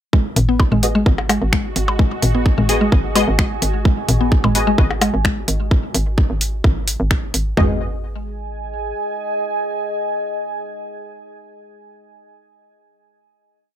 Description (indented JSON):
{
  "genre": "minimal techno",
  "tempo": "129 BPM",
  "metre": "4/4",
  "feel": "straight",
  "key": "G# minor",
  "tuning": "A4 = 440 Hz",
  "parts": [
    { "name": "mallet-like synth pluck", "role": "riff", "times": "0.1-7.8 s", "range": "D#3 to B3", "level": "-21 LUFS", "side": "left 1 dB", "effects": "chorus, sidechain pumping, digital delay" },
    { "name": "garage drum kit", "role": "drums", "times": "0.1-7.7 s", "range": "kick drum, toms", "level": "-17 LUFS", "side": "equal", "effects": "none" },
    { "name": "deep dark ambient pad", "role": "texture", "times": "1.8-11.5 s", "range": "G#4 to G#5", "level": "-26 LUFS", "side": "right 1 dB", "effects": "chorus, built-in reverb, sidechain pumping" },
    { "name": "swarming drone", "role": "texture", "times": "1.2-5.7 s", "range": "F#4", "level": "-32 LUFS", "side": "right 3 dB", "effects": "built-in reverb, sidechain pumping" },
    { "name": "hollow knocking FM bass", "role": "bass", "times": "0.4-8.9 s", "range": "G#1", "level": "-22 LUFS", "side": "equal", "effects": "tube saturation, sidechain pumping" },
    { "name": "booming analog drum machine", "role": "drums", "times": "0.4-7.4 s", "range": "finger snaps, hi-hat", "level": "-20 LUFS", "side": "equal", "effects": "none" },
    { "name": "electronic toms and percussion blips", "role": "percussion", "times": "0.4-5.1 s", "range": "none", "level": "-20 LUFS", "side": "left 2 dB", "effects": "overdrive" },
    { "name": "filtered dub chord stab", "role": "stabs", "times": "0.8-4.7, 7.6-11.3 s", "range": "B3 to D#5", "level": "-22 LUFS", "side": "left 2 dB", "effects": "ensemble chorus, digital delay" }
  ],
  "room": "light reverb",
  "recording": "none",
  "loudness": "-15 LUFS",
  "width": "side -10 dB against mid",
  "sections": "0.1-7.6 groove; 7.6-11.3 final chord",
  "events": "fade-in on ambient pad 0.1-5.7",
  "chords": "0.1 G#m7"
}